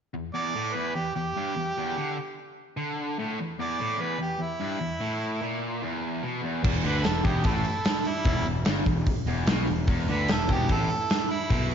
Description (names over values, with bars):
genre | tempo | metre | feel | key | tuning
blues rock power trio and southern rock | 148 BPM | 4/4 | straight | E minor | A4 = 439 Hz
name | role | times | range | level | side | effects
distorted electric guitar | riff | 0.1-11.7 s | E2 to D3 | -30 LUFS | left 1 dB | overdrive, slapback echo
clear harmonica | melody | 0.3-11.7 s | E4 to D5 | -30 LUFS | right 3 dB | overdrive, slapback echo
fuzz picked electric bass | bass | 6.6-11.7 s | E1 to D2 | -28 LUFS | left 1 dB | overdrive
big rock drum kit | drums | 6.6-11.7 s | crash cymbal, hi-hat, kick drum, snare drum | -26 LUFS | equal | none
nasal lead guitar with a parked wah | second line | 6.9-11.7 s | G3 to E4 | -38 LUFS | right 2 dB | overdrive, slapback echo
room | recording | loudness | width
moderate lush hall reverb, RT60 1.7 s, small room ambience | big arena sound, nothing above 7.5 kHz | -25 LUFS | side -8 dB against mid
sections
0.1-6.6 A section; 6.6-11.7 B section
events
none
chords
0.1 Em